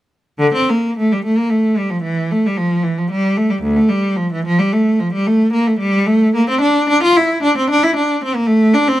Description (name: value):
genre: classical, baroque-style suite movement for unaccompanied cello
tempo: 74 BPM (dotted quarters)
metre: 12/8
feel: rubato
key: D minor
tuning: A4 = 440 Hz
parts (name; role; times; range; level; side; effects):
- rich cello; solo; 0.4-9.0 s; D2 to F4; -13 LUFS; equal; none
room: light reverb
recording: none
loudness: -13 LUFS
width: side -14 dB against mid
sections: 0.4-9.0 A section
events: none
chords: none